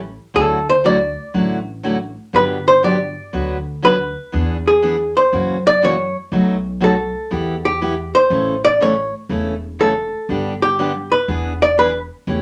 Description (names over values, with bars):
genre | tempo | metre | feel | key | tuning
country, western swing | 121 BPM | 4/4 | swing 67% on 8ths | D major | A4 = 439 Hz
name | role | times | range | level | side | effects
upright bass | bass | 0.0-12.4 s | E1 to F#2 | -28 LUFS | equal | none
picked steel-string acoustic guitar | accompaniment | 0.3-12.4 s | B2 to B4 | -23 LUFS | equal | none
archtop guitar, miked and amplified | melody | 0.4-12.0 s | G4 to D5 | -17 LUFS | equal | none
room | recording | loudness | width
wet club reverb, RT60 0.5 s | none | -17 LUFS | mono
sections
0.0-12.4 A section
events
hollow-body jazz guitar solo 0.0-12.4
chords
0.3 Dadd9; 2.3 Gmaj7; 3.3 D6; 4.3 E7; 5.3 F#7; 6.3 B7; 7.3 Em; 8.3 A; 10.3 G; 11.3 E7